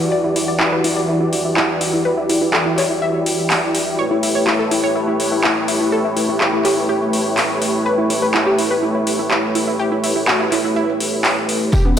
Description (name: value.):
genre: progressive house.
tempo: 124 BPM.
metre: 4/4.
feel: straight.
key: unclear.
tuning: A4 = 440 Hz.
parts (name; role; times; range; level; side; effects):
filtered supersaw swell; sustained chords; 0.0-12.0 s; E3 to D5; -19 LUFS; equal; sidechain pumping, low-pass filter.
analog pluck; arpeggios; 0.0-12.0 s; B3 to E5; -20 LUFS; equal; chorus, cassette tape, sidechain pumping, digital delay.
deep house drum kit; drums; 0.4-12.0 s; handclaps, hi-hat, snare drum; -20 LUFS; equal; overdrive.
electronic kick drum; drums; 11.7-11.8 s; none; -14 LUFS; equal; none.
tambourine; percussion; 11.7-12.0 s; none; -28 LUFS; left 3 dB; none.
congas; percussion; 11.9 s; none; -22 LUFS; right 2 dB; sidechain pumping on perc.
room: moderate lush hall reverb, RT60 2.6 s.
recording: none.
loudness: -15 LUFS.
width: side -9 dB against mid.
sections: 0.0-11.7 A section.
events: filter sweep on synth pluck 0.0-11.7; drum fill 11.7.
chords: 0.0 Em7; 4.0 A7.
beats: | 0.12 0.60 1.08 1.57 | 2.05 2.54 3.02 3.50 | 3.99 4.47 4.96 5.44 | 5.92 6.41 6.89 7.38 | 7.86 8.34 8.83 9.31 | 9.79 10.28 10.76 11.25 | 11.73.